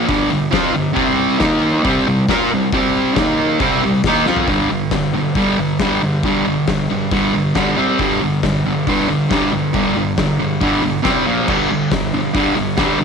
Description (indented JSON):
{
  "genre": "garage rock duo or trio",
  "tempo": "137 BPM",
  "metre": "4/4",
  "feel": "straight",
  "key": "unclear",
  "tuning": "A4 = 440 Hz",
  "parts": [
    { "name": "fuzz guitar", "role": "riff", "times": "0.0-13.0 s", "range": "G2 to Bb4", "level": "-15 LUFS", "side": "right 1 dB", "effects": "distortion" },
    { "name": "oversized low-tuned drum kit", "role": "drums", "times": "0.1-12.9 s", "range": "crash cymbal, hi-hat, kick drum, snare drum, toms", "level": "-22 LUFS", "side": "left 3 dB", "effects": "none" }
  ],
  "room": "light reverb, small room ambience",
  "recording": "1960s-style stereo",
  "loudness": "-14 LUFS",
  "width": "side -6 dB against mid",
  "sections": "0.0-4.5 A section; 4.5-13.0 B section",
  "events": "drum fill 4.3",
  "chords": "0.1 G5; 1.0 C5; 1.4 Eb5; 1.8 C5; 3.2 Eb5; 3.6 C5; 4.5 G5; 7.8 C5; 8.0 G5; 11.1 C5; 11.3 Bb5; 11.5 G5"
}